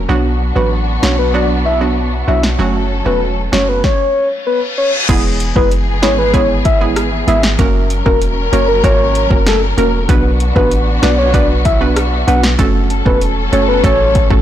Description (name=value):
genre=dancehall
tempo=96 BPM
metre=4/4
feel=straight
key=F# minor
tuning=A4 = 439 Hz
part: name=warm studio string section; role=sustained chords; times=0.0-14.4 s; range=E3 to A#4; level=-22 LUFS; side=left 3 dB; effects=sidechain pumping
part: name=warm 808-style bass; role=bass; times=0.0-14.4 s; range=E1 to B1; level=-16 LUFS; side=equal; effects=none
part: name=hollow square pluck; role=accompaniment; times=0.1-14.4 s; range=F#3 to B4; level=-18 LUFS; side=right 5 dB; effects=chorus
part: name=soft octave-layered synth lead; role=melody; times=0.6-14.3 s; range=A4 to F#5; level=-16 LUFS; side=left 2 dB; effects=chorus, digital delay
part: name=deep house drum kit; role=drums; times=1.0-14.4 s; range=crash cymbal, hi-hat, kick drum, rim click, snare drum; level=-16 LUFS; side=equal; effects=overdrive
part: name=reverse cymbal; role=sound effects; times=4.4-5.1 s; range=none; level=-20 LUFS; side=left 3 dB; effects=none
room=light reverb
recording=blown-out, overdriven recording, overdrive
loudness=-11 LUFS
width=side -11 dB against mid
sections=0.0-5.1 A section; 5.1-14.4 B section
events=reverse cymbal 4.4-5.1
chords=0.1 Bm; 2.6 F#m; 5.1 E; 7.6 F#; 10.1 Bm; 12.6 F#m